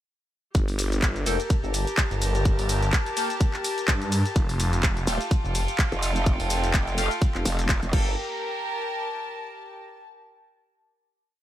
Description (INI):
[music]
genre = bass house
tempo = 126 BPM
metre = 4/4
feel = swing 56% on 16ths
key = G minor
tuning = A4 = 440 Hz
[part]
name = phased detuned saw bass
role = bass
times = 0.5-8.2 s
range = F1 to G2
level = -25 LUFS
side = equal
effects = phaser, tube saturation, sidechain pumping
[part]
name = electronic kick drum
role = drums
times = 0.5-8.0 s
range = none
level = -23 LUFS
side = equal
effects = small room ambience
[part]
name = garage drum kit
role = drums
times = 0.5-8.0 s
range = crash cymbal, handclaps, hi-hat, ride cymbal, shaker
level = -29 LUFS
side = equal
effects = small room ambience
[part]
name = clear studio string section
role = texture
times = 0.5-10.0 s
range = F4 to A5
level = -31 LUFS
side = equal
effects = sidechain pumping
[part]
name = band-passed chord stab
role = stabs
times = 1.3-8.1 s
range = A3 to G5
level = -32 LUFS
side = left 1 dB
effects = phaser, wide subtle chorus, sidechain pumping, digital delay
[part]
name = growl bass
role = bass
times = 5.1-7.9 s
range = Eb1 to F1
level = -26 LUFS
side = equal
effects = chorus, tube saturation, sidechain pumping
[sound]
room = light reverb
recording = none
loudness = -22 LUFS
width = side -12 dB against mid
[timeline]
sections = 0.5-8.2 drop; 8.2-10.1 final note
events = drop 0.5-8.2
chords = 0.5 Gmadd9; 4.4 Fadd9; 7.9 Gmadd9